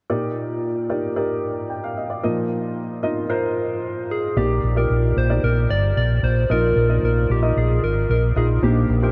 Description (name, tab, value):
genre	pop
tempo	113 BPM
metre	4/4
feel	straight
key	unclear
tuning	A4 = 440 Hz
part	dark upright piano	accompaniment	0.1-9.1 s	Bb2 to G5	-25 LUFS	equal	analog chorus
part	soft struck synth lead	melody	4.1-9.1 s	G4 to D5	-26 LUFS	equal	chorus, analog delay
part	fingered electric bass	bass	4.4-9.1 s	G1 to Bb1	-21 LUFS	equal	none
room	moderate huge ambient reverb, RT60 8.7 s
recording	dreamy mix soaked in reverb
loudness	-21 LUFS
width	mono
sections	0.1-4.4 A section; 4.4-9.1 B section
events	none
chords	0.1 Ebmaj7/Bb; 2.2 Bbsus4; 4.4 Ebmaj7/Bb; 6.5 Bbsus4